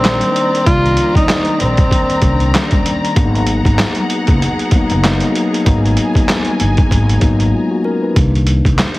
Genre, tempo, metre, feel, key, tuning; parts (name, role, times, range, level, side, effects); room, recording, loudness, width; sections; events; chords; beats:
hip hop, boom-bap hip-hop; 96 BPM; 4/4; swing 57% on 16ths; A4 = 440 Hz
breathy tenor saxophone; melody; 0.0-2.7 s; C4 to F4; -17 LUFS; equal; high-pass filter, low-pass filter, digital delay
mellow tine electric piano; accompaniment; 0.0-9.0 s; C2 to D5; -18 LUFS; left 2 dB; cassette tape, high-pass filter, low-pass filter
rich studio string section; sustained chords; 0.0-8.1 s; Cb3 to Bb5; -23 LUFS; left 2 dB; high-pass filter, low-pass filter
upright bass; bass; 0.0-8.8 s; Gb1 to C2; -16 LUFS; equal
trip hop sampler-style drum kit; drums; 0.0-9.0 s; handclaps, hi-hat, kick drum, snare drum; -15 LUFS; equal
little or no reverb; heavily compressed radio sound, multiband compression, vinyl crackle; -11 LUFS; side -19 dB against mid
0.0-8.2 A section
break 7.5-8.2
0.0 Cm9; 3.2 Abm9; 8.2 Cm9
0.04 | 0.66 1.29 1.91 2.54 | 3.16 3.79 4.41 5.04 | 5.66 6.29 6.91 7.54 | 8.16 8.79